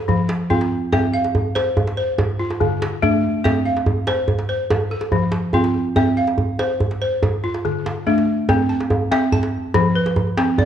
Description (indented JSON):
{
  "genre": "west african traditional, West African string and xylophone music",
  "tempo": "95 BPM (dotted quarters)",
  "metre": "12/8",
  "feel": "straight",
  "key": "C major",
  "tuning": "A4 = 439 Hz",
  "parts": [
    { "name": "balafon", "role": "arpeggios", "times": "0.0-10.7 s", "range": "D3 to A5", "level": "-19 LUFS", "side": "left 1 dB", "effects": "none" },
    { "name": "djembe", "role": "percussion", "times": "0.1-10.7 s", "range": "none", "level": "-21 LUFS", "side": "right 1 dB", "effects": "none" }
  ],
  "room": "wet recital hall reverb, RT60 1.6 s",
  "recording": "dark, warm production",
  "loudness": "-17 LUFS",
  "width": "side -9 dB against mid",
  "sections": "0.0-8.5 A section; 8.5-10.7 B section",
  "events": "none",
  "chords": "0.0 F; 0.9 C; 2.2 Dm; 3.4 C; 4.7 F; 6.0 C; 7.2 Dm; 8.5 C; 9.7 F",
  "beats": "0.29 | 0.92 1.55 2.18 2.81 | 3.44 4.07 4.70 5.33 | 5.96 6.59 7.22 7.86 | 8.49 9.12 9.75 10.38"
}